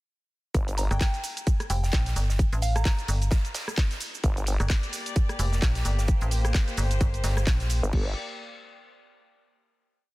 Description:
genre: bass house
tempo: 130 BPM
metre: 4/4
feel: swing 57% on 16ths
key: G minor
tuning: A4 = 440 Hz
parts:
  - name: vowel-sweep wobble bass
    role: bass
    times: 0.5-0.9, 4.2-4.6, 7.8-8.1 s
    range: G1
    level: -28 LUFS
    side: equal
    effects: chorus, sidechain pumping
  - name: electronic kick drum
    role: drums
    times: 0.5-8.0 s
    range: none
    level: -24 LUFS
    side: equal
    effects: none
  - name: garage drum kit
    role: drums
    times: 0.5-8.0 s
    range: crash cymbal, handclaps, hi-hat, rim click, shaker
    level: -34 LUFS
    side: equal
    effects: none
  - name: gated 80s drum kit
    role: drums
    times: 0.5-7.8 s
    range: hi-hat, snare drum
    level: -40 LUFS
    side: right 2 dB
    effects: sidechain pumping on hats, high-pass filter on hats, high-pass filter on snare, high-pass filter on room
  - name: soft synth bell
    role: melody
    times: 0.8-3.2 s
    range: F5 to Bb5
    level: -36 LUFS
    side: right 2 dB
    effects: chorus, tape echo
  - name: metallic FM bass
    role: bass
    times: 0.9-7.8 s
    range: F1 to Bb1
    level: -25 LUFS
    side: equal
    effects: tube saturation, sidechain pumping
  - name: rich chamber string section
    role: sustained chords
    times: 4.2-8.1 s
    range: Bb3 to D5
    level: -37 LUFS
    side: left 2 dB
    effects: sidechain pumping
room: digital ambience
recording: dense, heavily limited modern master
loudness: -23 LUFS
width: side -20 dB against mid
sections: 0.5-7.9 drop; 7.9-9.8 final chord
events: drop 0.5-7.9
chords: 0.5 Gm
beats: | 0.55 1.01 1.47 1.93 | 2.39 2.85 3.31 3.78 | 4.24 4.70 5.16 5.62 | 6.08 6.55 7.01 7.47 | 7.93

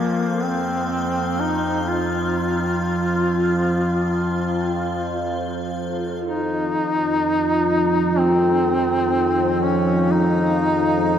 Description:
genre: dark ambient drone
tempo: free time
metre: none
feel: none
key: F minor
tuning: A4 = 440 Hz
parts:
  - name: warm duduk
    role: melody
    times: 0.0-11.2 s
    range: Bb3 to F4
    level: -21 LUFS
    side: left 1 dB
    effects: tape echo
  - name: tubular bells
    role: arpeggios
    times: 0.0-11.2 s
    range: none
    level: barely audible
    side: none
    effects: none
  - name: overtone-sweeping drone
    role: drone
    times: 0.0-11.2 s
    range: F2 to F3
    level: -21 LUFS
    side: right 1 dB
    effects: chorus, built-in reverb
  - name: icy glass pad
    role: texture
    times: 0.0-11.2 s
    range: C4 to Eb5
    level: -33 LUFS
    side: right 2 dB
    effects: chorus, built-in reverb
  - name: dark analog pad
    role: sustained chords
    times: 6.2-11.2 s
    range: Eb4 to F5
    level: -32 LUFS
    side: left 2 dB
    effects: none
room: wet cathedral reverb, RT60 5.1 s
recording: none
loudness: -18 LUFS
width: side -9 dB against mid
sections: 0.0-6.2 A section; 6.2-11.2 B section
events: fade-in on ambient pad 6.2-11.2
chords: 0.0 Fm; 6.2 Fm7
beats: free time

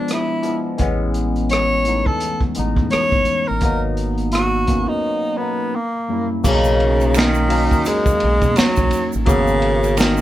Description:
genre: R&B, neo-soul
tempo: 85 BPM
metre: 4/4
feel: swing 58% on 16ths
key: B major from 6.4 s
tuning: A4 = 435 Hz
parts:
  - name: breathy tenor saxophone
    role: melody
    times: 0.0-10.2 s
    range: C#3 to C#5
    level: -19 LUFS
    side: equal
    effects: none
  - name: barky tine electric piano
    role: accompaniment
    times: 0.0-10.2 s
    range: F#2 to A#4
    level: -21 LUFS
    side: left 1 dB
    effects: overdrive, phaser
  - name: crunchy breakbeat drum kit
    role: drums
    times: 0.1-10.2 s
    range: crash cymbal, finger snaps, hi-hat, kick drum, ride cymbal, rim click, snare drum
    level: -21 LUFS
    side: equal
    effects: none
  - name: deep dub fingered electric bass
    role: bass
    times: 0.8-10.2 s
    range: G#1 to B2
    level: -21 LUFS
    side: equal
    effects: none
  - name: egg shaker and finger snaps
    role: percussion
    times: 6.4-10.2 s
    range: none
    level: -33 LUFS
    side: right 7 dB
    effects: none
room: light reverb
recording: band playing live in one room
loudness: -16 LUFS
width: side -13 dB against mid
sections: 0.0-6.4 A section; 6.4-10.2 B section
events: break 5.0-6.4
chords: 0.0 E7b9; 0.8 Amaj7; 3.6 G#m9; 5.7 F#7b9; 6.4 Bmaj9; 9.3 G#m11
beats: 0.09 | 0.80 1.50 2.21 2.91 | 3.62 4.33 5.03 5.74 | 6.44 7.15 7.85 8.56 | 9.27 9.97

